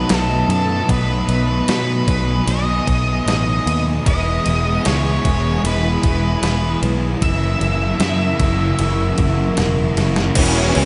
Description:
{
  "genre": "rock, shoegaze and dream pop",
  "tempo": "76 BPM",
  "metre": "4/4",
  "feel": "straight",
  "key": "unclear",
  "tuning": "A4 = 440 Hz",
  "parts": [
    { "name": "octave-fuzz lead guitar", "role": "melody", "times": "0.0-10.9 s", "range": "B3 to E5", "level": "-26 LUFS", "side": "equal", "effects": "distortion, delay" },
    { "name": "icy glass pad", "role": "sustained chords", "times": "0.0-10.9 s", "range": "E4 to D#6", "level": "-30 LUFS", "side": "equal", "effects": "chorus, built-in reverb" },
    { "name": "overdriven electric guitar", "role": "riff", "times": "0.0-10.9 s", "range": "F#2 to E4", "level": "-26 LUFS", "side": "equal", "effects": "lush chorus" },
    { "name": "overdriven electric guitar", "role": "riff", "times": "0.0-10.9 s", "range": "F#2 to G#4", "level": "-26 LUFS", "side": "equal", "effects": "reverse reverb" },
    { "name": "picked electric bass", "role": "bass", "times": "0.0-10.9 s", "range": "E1 to B2", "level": "-22 LUFS", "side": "equal", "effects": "none" },
    { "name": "crisp 8-bit digital drum machine", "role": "drums", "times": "0.1-10.9 s", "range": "crash cymbal, kick drum, ride cymbal, snare drum", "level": "-25 LUFS", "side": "equal", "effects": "none" },
    { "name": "raw garage guitar", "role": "riff", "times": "10.4-10.9 s", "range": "E2 to E3", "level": "-25 LUFS", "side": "equal", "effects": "overdrive, lush chorus" }
  ],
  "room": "moderate plate reverb, RT60 3.3 s",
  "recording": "dreamy mix soaked in reverb, nothing above 10.8 kHz",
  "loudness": "-18 LUFS",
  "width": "mono",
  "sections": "0.0-10.4 A section",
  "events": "drum fill 10.0-10.4",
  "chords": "0.0 B7; 4.1 Emaj7; 7.2 F#7",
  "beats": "0.11 | 0.90 1.69 2.48 3.27 | 4.06 4.85 5.64 6.43 | 7.22 8.01 8.80 9.58 | 10.37"
}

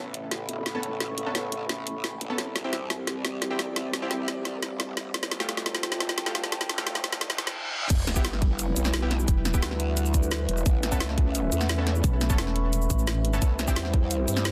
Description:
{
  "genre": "dark technical drum and bass",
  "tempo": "174 BPM",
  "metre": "4/4",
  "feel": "straight",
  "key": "E phrygian",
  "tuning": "A4 = 442 Hz",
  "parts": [
    { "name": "dark analog pad", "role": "sustained chords", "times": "0.0-14.5 s", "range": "G3 to C5", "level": "-38 LUFS", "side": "equal", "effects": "chorus, sidechain pumping" },
    { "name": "growl bass", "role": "bass", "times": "0.0-14.5 s", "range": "E1 to G2", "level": "-33 LUFS", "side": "equal", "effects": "chorus, tube saturation, sidechain pumping, high-pass filter" },
    { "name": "warbly tape-like pad", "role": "texture", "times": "0.0-14.5 s", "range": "C4 to C#6", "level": "-39 LUFS", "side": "equal", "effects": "chorus, built-in reverb, sidechain pumping" },
    { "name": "drum and bass drum kit", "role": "drums", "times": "0.1-14.5 s", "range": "cabasa, crash cymbal, hi-hat, snare drum", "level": "-32 LUFS", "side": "equal", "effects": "none" },
    { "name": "orchestra-hit-like synth stab", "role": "stabs", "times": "0.7-13.8 s", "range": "A3 to A4", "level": "-38 LUFS", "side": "equal", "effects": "built-in reverb, delay" },
    { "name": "riser, reverse cymbal and sub drop", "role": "sound effects", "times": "7.2-9.3 s", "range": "none", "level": "-39 LUFS", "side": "equal", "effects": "none" },
    { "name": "electronic kick drum", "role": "drums", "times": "7.9-14.0 s", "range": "none", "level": "-26 LUFS", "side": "equal", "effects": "none" },
    { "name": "pulsing pluck wobble bass", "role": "bass", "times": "9.3-9.6, 12.0-13.4 s", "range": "E1 to B1", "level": "-29 LUFS", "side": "equal", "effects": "chorus" }
  ],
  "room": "light reverb, digital ambience",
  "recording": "dense, heavily limited modern master, high-pass filter",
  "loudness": "-27 LUFS",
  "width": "mono",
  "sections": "0.0-7.9 A section; 7.9-14.5 B section",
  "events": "build-up 0.0-7.9; drum fill 0.0-7.6; filter sweep on analog synth pad 0.0-7.9; filter sweep 0.0-7.9; reverse cymbal 7.2-7.9; drop 7.9-14.5; impact 7.9-9.3",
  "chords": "0.0 Aadd9; 2.4 C; 5.1 Fadd9; 7.9 Em; 10.7 Aadd9; 13.4 C",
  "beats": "0.32 0.66 | 1.00 1.35 1.69 2.04 | 2.38 2.73 3.07 3.42 | 3.76 4.11 4.45 4.80 | 5.14 5.49 5.83 6.18 | 6.52 6.87 7.21 7.56 | 7.90 8.25 8.59 8.94 | 9.28 9.62 9.97 10.31 | 10.66 11.00 11.35 11.69 | 12.04 12.38 12.73 13.07 | 13.42 13.76 14.11 14.45"
}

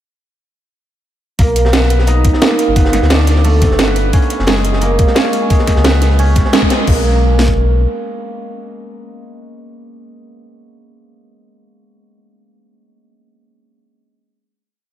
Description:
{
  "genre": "liquid drum and bass",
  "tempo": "175 BPM",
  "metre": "4/4",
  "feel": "straight",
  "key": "unclear",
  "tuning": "A4 = 440 Hz",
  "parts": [
    { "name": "concert harp", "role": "arpeggios", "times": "1.4-10.1 s", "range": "G#3 to D#4", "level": "-17 LUFS", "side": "right 2 dB", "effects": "tape echo" },
    { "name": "sub bass with octave", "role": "bass", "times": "1.4-7.9 s", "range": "F#1 to D2", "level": "-13 LUFS", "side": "left 1 dB", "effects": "none" },
    { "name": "crunchy breakbeat drum kit", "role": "drums", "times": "1.4-6.8 s", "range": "hi-hat, snare drum", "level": "-24 LUFS", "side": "left 1 dB", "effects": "high-pass filter on hats, high-pass filter on snare, high-pass filter on room" },
    { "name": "drum and bass drum kit", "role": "drums", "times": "1.4-7.6 s", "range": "kick drum, snare drum", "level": "-13 LUFS", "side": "equal", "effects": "none" },
    { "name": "drum and bass drum kit", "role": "drums", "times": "1.4-6.9 s", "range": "crash cymbal, hi-hat, snare drum", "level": "-18 LUFS", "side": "right 1 dB", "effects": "overdrive" }
  ],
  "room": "moderate church reverb, RT60 3.4 s",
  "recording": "dreamy mix soaked in reverb",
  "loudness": "-10 LUFS",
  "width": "side -12 dB against mid",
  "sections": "1.4-6.9 drop; 6.9-9.6 final chord",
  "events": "drop 1.4-6.9; band accent 6.5",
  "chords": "1.4 Bmaj7; 2.8 Gadd9; 4.1 F#add9; 5.5 C#5; 6.9 N.C.",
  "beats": "| 1.39 1.73 2.07 2.42 | 2.76 3.10 3.45 3.79 | 4.13 4.47 4.82 5.16 | 5.50 5.85 6.19 6.53 | 6.87 7.22 7.56 7.90 | 8.25 8.59 8.93 9.27"
}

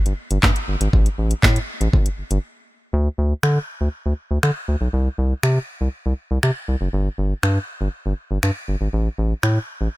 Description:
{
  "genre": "dance-pop",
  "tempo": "120 BPM",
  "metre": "4/4",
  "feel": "straight",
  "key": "unclear",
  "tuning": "A4 = 440 Hz",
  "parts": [
    { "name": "round analog bass", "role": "bass", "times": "0.1-9.9 s", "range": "F#1 to D3", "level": "-19 LUFS", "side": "equal", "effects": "sidechain pumping" },
    { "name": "smooth R&B drum kit", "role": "drums", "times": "0.1-9.5 s", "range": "finger snaps, handclaps, hi-hat, kick drum, snare drum", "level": "-20 LUFS", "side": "equal", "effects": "none" }
  ],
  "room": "little or no reverb",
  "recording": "none",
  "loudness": "-18 LUFS",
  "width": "side -19 dB against mid",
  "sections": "0.0-2.9 A section; 2.9-10.0 B section",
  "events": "break 2.4-2.9",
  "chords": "none",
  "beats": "0.43 | 0.93 1.43 1.93 2.43 | 2.93 3.43 3.93 4.43 | 4.93 5.43 5.93 6.43 | 6.93 7.43 7.93 8.43 | 8.93 9.43"
}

